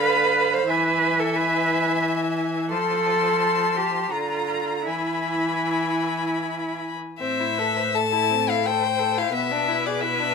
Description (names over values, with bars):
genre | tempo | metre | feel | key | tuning
classical, slow romantic movement for string quartet | 75-95 BPM | 3/4 | rubato | A minor | A4 = 440 Hz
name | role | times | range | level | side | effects
clear violin | melody | 0.0-10.3 s | D5 to C6 | -26 LUFS | left 11 dB | none
rich violin | second line | 0.0-10.3 s | B3 to Bb5 | -28 LUFS | left 4 dB | none
rich viola | accompaniment | 0.0-10.3 s | D3 to C5 | -27 LUFS | right 1 dB | none
clear cello | bass | 0.0-10.3 s | A2 to C5 | -25 LUFS | right 4 dB | none
room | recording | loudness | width
light reverb | minimal, uncompressed stereo recording | -20 LUFS | side -5 dB against mid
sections
0.0-7.2 A section; 7.2-10.3 B section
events
none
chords
0.0 Bdim/D; 0.7 E; 2.7 F; 4.1 Bb/D; 4.9 E; 7.2 Am; 9.3 E7(no3)/B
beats
0.02 | 0.68 1.34 2.02 | 2.71 3.40 4.12 | 4.88 5.65 6.41 | 7.19 7.94 8.65 | 9.34 10.02